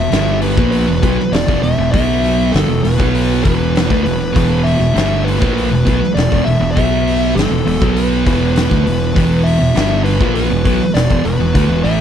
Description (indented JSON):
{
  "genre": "stoner and doom metal",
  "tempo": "100 BPM",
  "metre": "4/4",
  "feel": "straight",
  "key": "E minor",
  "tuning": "A4 = 440 Hz",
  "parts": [
    { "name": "fuzz lead guitar", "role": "melody", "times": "0.0-12.0 s", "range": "A4 to E5", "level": "-20 LUFS", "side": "left 2 dB", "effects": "distortion" },
    { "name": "string machine, full ensemble", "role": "sustained chords", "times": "0.0-12.0 s", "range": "E3 to B4", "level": "-28 LUFS", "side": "left 1 dB", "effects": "none" },
    { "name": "thick fuzz guitar", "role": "riff", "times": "0.0-12.0 s", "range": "E2 to B3", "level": "-20 LUFS", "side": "left 9 dB", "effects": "distortion" },
    { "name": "thick fuzz guitar", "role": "riff", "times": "0.0-12.0 s", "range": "E2 to B3", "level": "-17 LUFS", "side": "right 9 dB", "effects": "distortion" },
    { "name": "fuzz fingered electric bass", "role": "bass", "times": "0.0-12.0 s", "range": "E1 to D2", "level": "-19 LUFS", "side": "left 1 dB", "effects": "overdrive" },
    { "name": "oversized low-tuned drum kit", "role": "drums", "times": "0.1-12.0 s", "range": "hi-hat, kick drum, snare drum", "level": "-19 LUFS", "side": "left 1 dB", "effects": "none" }
  ],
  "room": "small room ambience",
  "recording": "none",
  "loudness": "-12 LUFS",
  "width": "side -9 dB against mid",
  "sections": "0.0-12.0 A section",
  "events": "none",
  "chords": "0.0 Em; 1.9 B5; 2.5 Em; 6.8 B5; 7.4 Em"
}